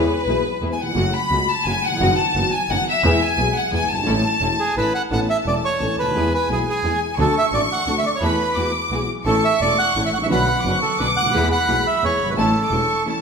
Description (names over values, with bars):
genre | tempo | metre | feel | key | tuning
tango | 174 BPM | 3/4 | rubato | A major | A4 = 440 Hz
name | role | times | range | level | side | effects
clear studio violin section | second line | 0.0-13.2 s | B4 to D6 | -22 LUFS | left 2 dB | none
dark upright piano | accompaniment | 0.0-13.2 s | E1 to A4 | -24 LUFS | left 1 dB | none
dark symphonic string section | stabs | 0.0-13.2 s | A3 to B4 | -30 LUFS | equal | none
clear double bass | bass | 0.0-12.9 s | E1 to E2 | -25 LUFS | right 2 dB | none
bandoneon | melody | 4.6-13.0 s | G#4 to F#5 | -21 LUFS | right 2 dB | none
room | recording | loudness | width
wet recital hall reverb, RT60 1.8 s | minimal, uncompressed stereo recording | -17 LUFS | side -6 dB against mid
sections
0.0-5.1 A section; 5.1-13.2 B section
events
violin section solo 0.0-5.1; break 13.1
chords
0.0 E; 1.0 F#m; 2.0 B/F#; 3.0 E; 4.1 A; 5.1 Aadd9; 6.1 E; 7.2 D; 8.2 Esus4; 8.6 Eadd9; 9.3 A; 10.3 Bmadd9; 11.3 E; 12.4 A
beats
0.27 0.61 | 0.96 1.31 1.66 | 2.01 2.35 2.69 | 3.04 3.38 3.72 | 4.06 4.41 4.76 | 5.11 5.46 5.80 | 6.15 6.49 6.83 | 7.18 7.52 7.87 | 8.21 8.56 8.91 | 9.26 9.61 9.96 | 10.31 10.65 11.00 | 11.34 11.68 12.03 | 12.37 12.71 13.06